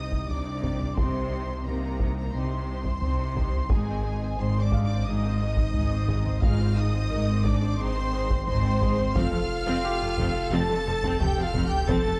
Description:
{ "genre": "cinematic, hybrid orchestral and electronic film score", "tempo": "88 BPM", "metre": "4/4", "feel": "straight", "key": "unclear", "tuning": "A4 = 440 Hz", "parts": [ { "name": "warm symphonic violin section", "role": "melody", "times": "0.0-12.2 s", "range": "Ab5 to A6", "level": "-38 LUFS", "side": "equal", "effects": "none" }, { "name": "warm symphonic violin section", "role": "second line", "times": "0.0-12.2 s", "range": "Ab4 to A5", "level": "-38 LUFS", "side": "equal", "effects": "none" }, { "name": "warm symphonic viola section", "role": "accompaniment", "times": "0.0-12.2 s", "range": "F3 to C5", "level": "-38 LUFS", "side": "equal", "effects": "none" }, { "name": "mellow French horn section", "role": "sustained chords", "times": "0.0-12.2 s", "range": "Ab3 to A4", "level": "-36 LUFS", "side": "equal", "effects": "none" }, { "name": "rich symphonic cello section", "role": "bass", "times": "0.0-12.1 s", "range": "F2 to C3", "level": "-33 LUFS", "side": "equal", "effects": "none" }, { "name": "rich symphonic double bass section", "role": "bass", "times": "0.0-12.0 s", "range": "F1 to C2", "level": "-33 LUFS", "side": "equal", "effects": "none" }, { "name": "saturated sub bass", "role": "bass", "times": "0.0-12.2 s", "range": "F1 to C2", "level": "-36 LUFS", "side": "equal", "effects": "none" }, { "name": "felt-muted upright piano", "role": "texture", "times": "0.0-12.2 s", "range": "G4 to G5", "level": "-43 LUFS", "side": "equal", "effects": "none" }, { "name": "taiko ensemble", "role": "drums", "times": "0.1-12.2 s", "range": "none", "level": "-31 LUFS", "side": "equal", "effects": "none" } ], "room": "moderate scoring stage reverb, RT60 1.8 s", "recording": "dark, warm production", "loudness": "-26 LUFS", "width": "mono", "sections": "0.0-12.2 A section", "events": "none", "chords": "0.0 Cm; 3.7 Ab; 9.2 F" }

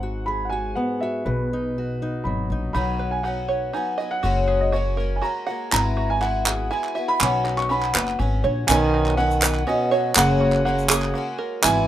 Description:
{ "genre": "indie folk with a building arrangement", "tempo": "121 BPM", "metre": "3/4", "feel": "straight", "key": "B major", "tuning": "A4 = 439 Hz", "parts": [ { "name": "warm upright piano", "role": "melody", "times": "0.0-11.9 s", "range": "B4 to C#6", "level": "-26 LUFS", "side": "right 3 dB", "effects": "none" }, { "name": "fingerpicked steel-string acoustic guitar", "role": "accompaniment", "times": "0.0-4.2 s", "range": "G#2 to G#4", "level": "-28 LUFS", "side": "left 2 dB", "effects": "none" }, { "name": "upright bass", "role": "bass", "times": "0.0-11.9 s", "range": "F#1 to B1", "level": "-25 LUFS", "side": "left 1 dB", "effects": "none" }, { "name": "picked twelve-string acoustic guitar", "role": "accompaniment", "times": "2.7-11.9 s", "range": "F#2 to F#4", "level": "-26 LUFS", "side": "left 5 dB", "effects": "none" }, { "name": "open-back banjo", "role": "arpeggios", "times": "2.7-11.9 s", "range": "A#3 to F#5", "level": "-29 LUFS", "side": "right 6 dB", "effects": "none" }, { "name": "group handclap", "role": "percussion", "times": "5.7-11.8 s", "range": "none", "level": "-21 LUFS", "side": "right 2 dB", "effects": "none" }, { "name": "warm trombone", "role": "second line", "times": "8.7-11.9 s", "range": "B2 to E3", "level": "-24 LUFS", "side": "right 3 dB", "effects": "none" }, { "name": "tube shaker", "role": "percussion", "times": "8.7-11.8 s", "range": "none", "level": "-30 LUFS", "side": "left 5 dB", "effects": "none" } ], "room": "light reverb", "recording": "rough home demo mix", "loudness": "-20 LUFS", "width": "side -12 dB against mid", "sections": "0.0-2.8 A section; 2.8-8.7 B section; 8.7-11.9 C section", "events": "none", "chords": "0.0 G#m7; 1.3 B; 2.8 Badd9; 4.2 F#add9; 5.7 Eadd9/G#; 7.2 Badd9; 10.2 F#add9" }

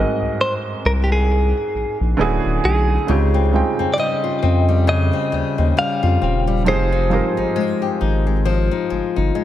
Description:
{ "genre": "R&B", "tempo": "67 BPM", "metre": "4/4", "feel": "swing 58% on 16ths", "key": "unclear", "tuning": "A4 = 443 Hz", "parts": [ { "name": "direct-recorded clean electric guitar", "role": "melody", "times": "0.0-8.0 s", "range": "G4 to F5", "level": "-22 LUFS", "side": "equal", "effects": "spring reverb, ping-pong delay" }, { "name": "felt-muted upright piano", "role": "accompaniment", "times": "0.0-9.4 s", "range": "Ab2 to G5", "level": "-23 LUFS", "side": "right 5 dB", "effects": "none" }, { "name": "saturated sub bass", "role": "bass", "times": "0.0-9.3 s", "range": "D1 to F2", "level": "-18 LUFS", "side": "equal", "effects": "none" }, { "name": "soft round pluck", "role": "texture", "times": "2.2-3.5, 9.4 s", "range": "B4 to Eb5", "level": "-34 LUFS", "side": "left 1 dB", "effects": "none" }, { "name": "flamenco guitar", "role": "arpeggios", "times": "3.1-9.4 s", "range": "Db3 to G4", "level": "-22 LUFS", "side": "left 8 dB", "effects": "none" } ], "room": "little or no reverb", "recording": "none", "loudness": "-16 LUFS", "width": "side -12 dB against mid", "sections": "0.0-9.4 A section", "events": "none", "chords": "0.0 Ab7; 2.2 Dmaj9#11; 3.1 Dbmaj9#11; 6.7 Fm9" }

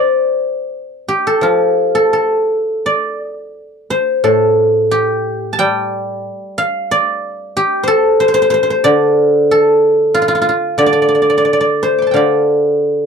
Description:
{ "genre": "chinese traditional, Chinese solo plucked strings", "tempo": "81-94 BPM", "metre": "4/4", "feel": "rubato", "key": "A jue mode", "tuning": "A4 = 440 Hz", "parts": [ { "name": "guzheng", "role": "solo", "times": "0.0-13.1 s", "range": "A2 to D6", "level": "-12 LUFS", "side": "equal", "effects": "none" } ], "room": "little or no reverb", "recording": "dry, close 1970s-style studio recording", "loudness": "-11 LUFS", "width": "side -6 dB against mid", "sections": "0.0-2.9 A section; 2.9-13.1 B section", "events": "none", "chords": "none" }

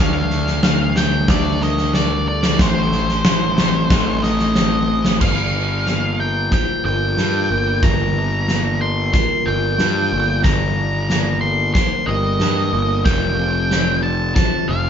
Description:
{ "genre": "post-rock", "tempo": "92 BPM", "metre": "4/4", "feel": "straight", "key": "G minor", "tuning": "A4 = 440 Hz", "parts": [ { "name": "octave-fuzz lead guitar", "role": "melody", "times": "0.0-14.9 s", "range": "C5 to C6", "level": "-21 LUFS", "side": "equal", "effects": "distortion" }, { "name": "electric guitar through a small old amp", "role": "arpeggios", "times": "0.0-14.9 s", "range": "G2 to Bb4", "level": "-26 LUFS", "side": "left 2 dB", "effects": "none" }, { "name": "vibraphone with medium hard mallets", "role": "arpeggios", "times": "0.0-14.9 s", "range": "A4 to D5", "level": "-30 LUFS", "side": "right 4 dB", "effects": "none" }, { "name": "fuzz picked electric bass", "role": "bass", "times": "0.0-14.9 s", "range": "F1 to G2", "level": "-20 LUFS", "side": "equal", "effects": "overdrive" }, { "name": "big rock drum kit", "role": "drums", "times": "0.3-14.5 s", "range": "crash cymbal, kick drum, snare drum", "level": "-19 LUFS", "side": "equal", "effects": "none" } ], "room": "moderate large studio reverb, RT60 0.8 s", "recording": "band playing live in one room, nothing above 7.5 kHz", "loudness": "-15 LUFS", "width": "side -8 dB against mid", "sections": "0.0-5.2 A section; 5.2-14.9 B section", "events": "build-up 5.2-14.9; drum fill 5.2-14.9", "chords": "0.0 Dsus4; 2.6 Adim; 5.2 Gm7; 10.4 Ebmaj7/G; 13.1 F" }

